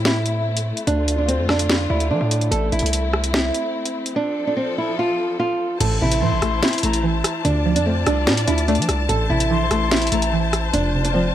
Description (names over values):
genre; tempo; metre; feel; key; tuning
hip hop, drill; 146 BPM; 4/4; half-time; A minor; A4 = 440 Hz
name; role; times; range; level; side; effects
nylon-string guitar; melody; 0.0-11.3 s; C4 to A4; -22 LUFS; right 2 dB; low-pass filter, ping-pong delay
warm symphonic string section; sustained chords; 0.0-11.3 s; D3 to A5; -27 LUFS; left 5 dB; none
distorted 808-style bass; bass; 0.0-11.3 s; F1 to F3; -22 LUFS; equal; distortion
drill drum kit; drums; 0.1-11.1 s; crash cymbal, hi-hat, rim click, snare drum; -22 LUFS; equal; none
string-like resonator pluck; accompaniment; 5.8-11.3 s; F2 to D5; -24 LUFS; right 2 dB; chorus, low-pass filter
silver concert flute; second line; 6.2-7.0, 9.5-10.3 s; Bb5 to C6; -29 LUFS; left 8 dB; ping-pong delay
room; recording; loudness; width
little or no reverb; none; -18 LUFS; side -11 dB against mid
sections
0.0-5.8 A section; 5.8-11.3 B section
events
none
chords
0.0 Am; 0.9 Dm; 2.5 Am; 4.2 F; 5.8 Am; 7.4 Dm; 9.1 Am; 10.7 F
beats
0.05 0.46 | 0.87 1.28 1.70 2.11 | 2.52 2.93 3.34 3.75 | 4.16 4.57 4.98 5.39 | 5.80 6.22 6.63 7.04 | 7.45 7.86 8.27 8.68 | 9.09 9.50 9.91 10.33 | 10.74 11.15